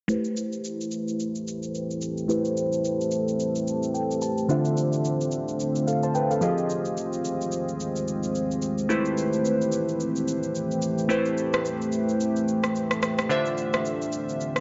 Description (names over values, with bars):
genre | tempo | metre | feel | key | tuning
amapiano | 109 BPM | 4/4 | swing 58% on 16ths | A minor | A4 = 440 Hz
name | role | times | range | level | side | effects
glassy digital keys | accompaniment | 0.1-14.6 s | D3 to A5 | -28 LUFS | equal | chorus, low-pass filter
deep dark ambient pad | sustained chords | 0.8-14.6 s | D3 to C5 | -31 LUFS | equal | chorus, built-in reverb, low-pass filter
electronic shaker and rim click | drums | 0.1-14.6 s | none | -35 LUFS | equal | none
room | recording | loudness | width
moderate plate reverb, RT60 2.2 s | nothing above 7.6 kHz | -26 LUFS | mono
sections
0.1-14.6 A section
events
filter sweep 0.1-14.6; synth keys fill 3.7-4.5; break 6.7-8.9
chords
0.1 Am7; 4.5 Dm7; 6.4 Fm7; 8.9 Am7; 13.3 Dm7